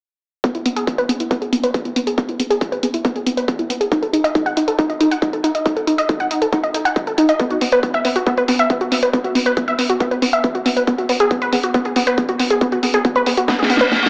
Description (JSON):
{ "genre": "uplifting trance", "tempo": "138 BPM", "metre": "4/4", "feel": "straight", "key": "unclear", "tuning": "A4 = 441 Hz", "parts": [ { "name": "unison pluck", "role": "arpeggios", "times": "0.4-14.1 s", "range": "B3 to F#5", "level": "-19 LUFS", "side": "equal", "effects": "sidechain pumping, diffuse ambient delay" }, { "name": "electronic kick drum", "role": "drums", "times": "0.4-14.0 s", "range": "none", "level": "-26 LUFS", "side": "equal", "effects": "distortion, high-pass filter on kick, high-pass filter on room" }, { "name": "techno drum kit", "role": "drums", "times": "0.4-14.1 s", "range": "hi-hat, snare drum", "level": "-27 LUFS", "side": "equal", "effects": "sidechain pumping on hats" }, { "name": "reverse cymbal", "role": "sound effects", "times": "13.6-14.1 s", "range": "none", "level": "-20 LUFS", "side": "equal", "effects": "none" } ], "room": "wet plate reverb, RT60 1.1 s", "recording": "dreamy mix soaked in reverb, AM radio sound", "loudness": "-18 LUFS", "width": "mono", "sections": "0.4-14.1 A section", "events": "filter sweep on synth arpeggio sound 0.4-14.1; drum fill 13.5-14.1; reverse cymbal 13.6-14.1", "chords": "none" }